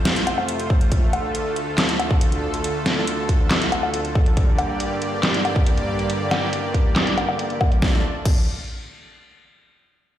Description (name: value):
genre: heavy wobble dubstep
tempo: 139 BPM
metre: 4/4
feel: half-time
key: D minor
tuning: A4 = 440 Hz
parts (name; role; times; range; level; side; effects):
- supersaw pad; sustained chords; 0.0-8.0 s; D2 to A5; -24 LUFS; equal; sidechain pumping
- dubstep drum kit; drums; 0.1-8.3 s; crash cymbal, handclaps, hi-hat, snare drum, woodblock; -23 LUFS; left 1 dB; low-pass filter on hats, low-pass filter on perc, low-pass filter on snare, low-pass filter on cymbals, low-pass filter on room
- electronic kick drum; drums; 0.7-8.3 s; none; -18 LUFS; equal; none
room: moderate lush hall reverb, RT60 2.0 s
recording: played on a big sound system in a bare room, stone room reverb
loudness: -18 LUFS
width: side -12 dB against mid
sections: 0.0-7.8 A section; 7.8-9.5 B section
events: none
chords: 0.0 F; 0.9 Dm; 4.4 Gm; 7.8 Dm